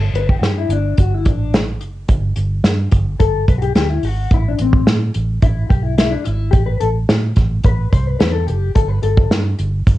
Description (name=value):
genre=indie pop, bedroom pop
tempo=108 BPM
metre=4/4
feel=straight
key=G major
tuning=A4 = 440 Hz
part: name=vintage muted fingered electric bass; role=bass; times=0.0-10.0 s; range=F#1 to A2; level=-18 LUFS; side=right 1 dB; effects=none
part: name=unplugged drum kit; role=drums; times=0.1-10.0 s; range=hi-hat, kick drum, snare drum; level=-15 LUFS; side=right 1 dB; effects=cassette tape
part: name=mellow electric guitar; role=accompaniment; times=0.2-9.3 s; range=C4 to C5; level=-22 LUFS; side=left 9 dB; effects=analog chorus, warbly pitch drift, cassette tape
room=light reverb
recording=home recording on cassette, nothing above 10.3 kHz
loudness=-14 LUFS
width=side -16 dB against mid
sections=0.0-10.0 A section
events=clean electric guitar solo 0.0-10.0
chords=0.0 Gmaj7sus2; 4.3 Amadd9; 8.8 Gsus2